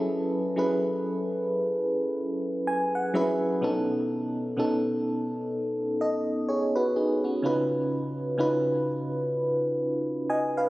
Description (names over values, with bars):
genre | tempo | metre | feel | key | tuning
R&B | 63 BPM | 4/4 | swing 58% on 16ths | unclear | A4 = 440 Hz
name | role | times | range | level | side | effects
FM electric piano with tremolo | solo | 0.0-10.7 s | B2 to G#5 | -25 LUFS | equal | tape echo
room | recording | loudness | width
moderate lush hall reverb, RT60 2.5 s | recorded on a phone in the room, studio reverb, compression | -25 LUFS | side -18 dB against mid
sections
0.0-3.6 A section; 3.6-10.7 B section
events
FM electric piano fill 2.2-3.6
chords
0.0 F#m9; 3.6 B7; 7.4 C#7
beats
0.77 1.72 2.67 | 3.62 4.58 5.53 6.48 | 7.43 8.39 9.34 10.29